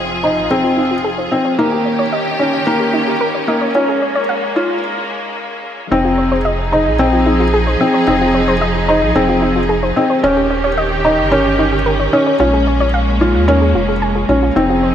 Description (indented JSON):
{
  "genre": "piano and strings electronica",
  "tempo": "111 BPM",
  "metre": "4/4",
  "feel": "straight",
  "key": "F minor",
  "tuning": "A4 = 441 Hz",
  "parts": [
    { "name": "clear studio string section", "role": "sustained chords", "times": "0.0-14.9 s", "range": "Eb3 to Ab4", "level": "-19 LUFS", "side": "equal", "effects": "shimmer reverb" },
    { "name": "warm sub bass", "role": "bass", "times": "0.0-14.9 s", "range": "Eb1 to Eb2", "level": "-20 LUFS", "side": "equal", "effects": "tube saturation" },
    { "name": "soft round pluck", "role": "arpeggios", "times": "0.2-14.9 s", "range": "Eb4 to Ab5", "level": "-20 LUFS", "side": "equal", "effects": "chorus, digital delay, shimmer reverb" },
    { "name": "felt-muted upright piano", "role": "riff", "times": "0.2-14.9 s", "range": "Bb3 to F4", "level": "-15 LUFS", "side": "left 1 dB", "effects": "digital delay, shimmer reverb" }
  ],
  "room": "moderate lush hall reverb, RT60 2.2 s",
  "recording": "high-pass filter",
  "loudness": "-12 LUFS",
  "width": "side -9 dB against mid",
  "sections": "0.0-5.9 A section; 5.9-14.9 B section",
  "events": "build-up 0.0-5.9; break 4.8-5.9; drop 5.9-14.9",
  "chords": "0.0 Fm7; 1.6 Eb7; 3.7 Bbm7; 5.9 Fm7; 10.2 Eb7; 12.4 Bbm7"
}